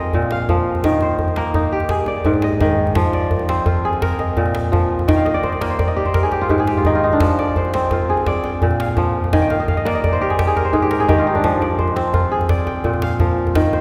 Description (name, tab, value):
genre	west african traditional, West African string and xylophone music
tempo	113 BPM (dotted quarters)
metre	12/8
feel	straight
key	unclear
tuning	A4 = 440 Hz
part	kora	arpeggios	0.0-13.8 s	Ab2 to Ab5	-20 LUFS	equal	none
part	djembe	percussion	0.0-13.8 s	none	-22 LUFS	equal	none
room	wet cathedral reverb, RT60 4.6 s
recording	recorded in a church or concert hall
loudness	-18 LUFS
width	mono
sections	0.0-7.2 A section; 7.2-13.8 B section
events	kora fill 5.1-7.2, 9.3-11.4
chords	0.0 Bb5; 0.8 Eb; 1.9 Ab5; 3.0 Fm; 4.0 Bb5; 5.1 Eb; 6.1 Ab5; 7.2 Fm; 8.3 Bb; 9.3 Eb; 10.4 Ab5; 11.4 Fm; 12.5 Bb